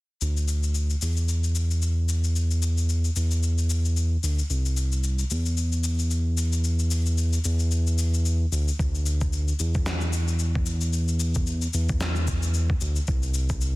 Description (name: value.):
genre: organic downtempo.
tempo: 112 BPM.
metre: 4/4.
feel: swing 56% on 16ths.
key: unclear.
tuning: A4 = 441 Hz.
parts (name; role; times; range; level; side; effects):
smooth gliding synth bass; bass; 0.2-13.8 s; C2 to E2; -23 LUFS; equal; sidechain pumping.
electronic shaker and snare drum; drums; 0.2-13.7 s; none; -32 LUFS; left 4 dB; none.
electronic kick drum; drums; 8.8-13.6 s; none; -27 LUFS; equal; none.
room: little or no reverb.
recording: dense, heavily limited modern master.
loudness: -22 LUFS.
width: side -20 dB against mid.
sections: 0.2-13.8 A section.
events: filter sweep on analog synth bass 0.2-13.8.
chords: none.